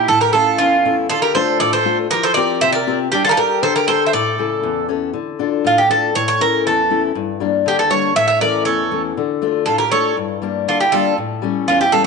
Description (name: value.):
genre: greek folk.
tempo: 119 BPM.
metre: 2/4.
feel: straight.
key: D harmonic minor from 5.1 s.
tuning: A4 = 440 Hz.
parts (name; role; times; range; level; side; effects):
Greek bouzouki; melody; 0.0-12.1 s; F4 to E5; -16 LUFS; right 2 dB; none.
mandolin; second line; 0.0-4.9, 8.2-12.0 s; C#4 to C#5; -23 LUFS; right 10 dB; none.
fingerpicked steel-string acoustic guitar; accompaniment; 0.0-12.1 s; E2 to Bb4; -20 LUFS; left 9 dB; none.
room: moderate echo chamber reverb, RT60 1.3 s, small room ambience.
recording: 1960s-style stereo with parts hard left and right, nothing above 10.3 kHz.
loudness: -14 LUFS.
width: side -4 dB against mid.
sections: 0.0-5.1 A section; 5.1-12.1 B section.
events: none.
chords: 0.1 A; 1.1 Dm; 2.1 Fsus2; 3.1 Gmadd9; 4.1 A; 5.1 Dm; 6.1 A; 7.2 Gm; 8.2 A; 9.2 Dm; 10.2 Gm; 11.2 A7.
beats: | 0.10 0.60 | 1.11 1.61 | 2.12 2.62 | 3.13 3.63 | 4.13 4.64 | 5.14 5.64 | 6.15 6.65 | 7.16 7.66 | 8.16 8.66 | 9.17 9.67 | 10.17 10.68 | 11.18 11.68.